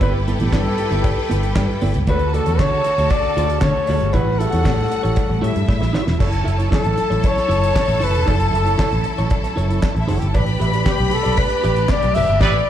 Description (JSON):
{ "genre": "disco", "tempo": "116 BPM", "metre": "4/4", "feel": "straight", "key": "unclear", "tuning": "A4 = 440 Hz", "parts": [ { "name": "warm flugelhorn", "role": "melody", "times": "0.0-12.7 s", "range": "G4 to E5", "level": "-21 LUFS", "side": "left 2 dB", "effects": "slapback echo" }, { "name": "rich studio string section", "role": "second line", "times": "0.0-12.6 s", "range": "E4 to B5", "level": "-26 LUFS", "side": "left 1 dB", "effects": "slapback echo" }, { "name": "electric guitar at the edge of break-up", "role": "accompaniment", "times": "0.0-12.6 s", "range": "B3 to E5", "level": "-27 LUFS", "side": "right 4 dB", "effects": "slapback echo" }, { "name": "clear studio string section", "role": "sustained chords", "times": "0.0-12.7 s", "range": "C#3 to B4", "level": "-27 LUFS", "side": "left 1 dB", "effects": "none" }, { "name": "fingered electric bass", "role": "bass", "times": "0.0-12.6 s", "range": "E1 to D3", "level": "-20 LUFS", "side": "equal", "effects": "none" }, { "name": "damped 70s drum kit", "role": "drums", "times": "0.0-12.6 s", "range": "crash cymbal, handclaps, hi-hat, kick drum, snare drum", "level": "-21 LUFS", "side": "equal", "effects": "none" }, { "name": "cowbell", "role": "percussion", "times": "0.0-12.0 s", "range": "none", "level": "-33 LUFS", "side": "right 1 dB", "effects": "slapback echo" }, { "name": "clear horn section", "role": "stabs", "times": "12.4-12.5 s", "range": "G3 to B4", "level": "-21 LUFS", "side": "right 3 dB", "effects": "slapback echo" } ], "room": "small room ambience", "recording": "live gig heard through the venue's PA, club reverb", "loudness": "-16 LUFS", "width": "side -10 dB against mid", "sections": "0.0-6.2 A section; 6.2-12.7 B section", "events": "drum fill 5.7-6.2; band accent 12.4", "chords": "0.0 G69; 2.1 Dmaj7; 4.1 A7; 10.3 A9sus4" }